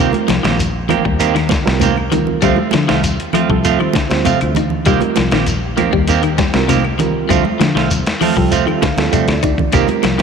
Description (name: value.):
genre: afrobeat.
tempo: 98 BPM.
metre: 4/4.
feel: straight.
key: C dorian.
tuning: A4 = 438 Hz.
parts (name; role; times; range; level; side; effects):
barky reed electric piano; accompaniment; 0.0-10.2 s; G3 to A5; -22 LUFS; right 9 dB; overdrive, fast tremolo.
clean electric guitar; arpeggios; 0.0-10.2 s; C3 to Eb4; -19 LUFS; left 10 dB; analog chorus.
semi-hollow electric guitar; stabs; 0.0-10.2 s; Eb3 to G4; -18 LUFS; right 9 dB; spring reverb.
fingered electric bass; bass; 0.0-10.2 s; Bb1 to D3; -20 LUFS; left 1 dB; none.
boom bap sampler-style drum kit; drums; 0.1-10.2 s; hi-hat, kick drum, snare drum; -20 LUFS; left 1 dB; none.
congas; percussion; 0.1-10.2 s; none; -22 LUFS; right 10 dB; none.
claves; percussion; 0.3-10.2 s; none; -31 LUFS; left 12 dB; none.
shekere; percussion; 0.3-10.2 s; none; -24 LUFS; left 1 dB; none.
room: moderate plate reverb, RT60 2.5 s.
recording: 1960s-style stereo with parts hard left and right.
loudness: -12 LUFS.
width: side -6 dB against mid.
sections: 0.0-10.2 A section.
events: reed electric piano fill 7.9-9.7; drum fill 9.0-9.7.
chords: 0.0 Cm7; 2.4 Dm7; 4.9 Cm7; 7.3 Dm7.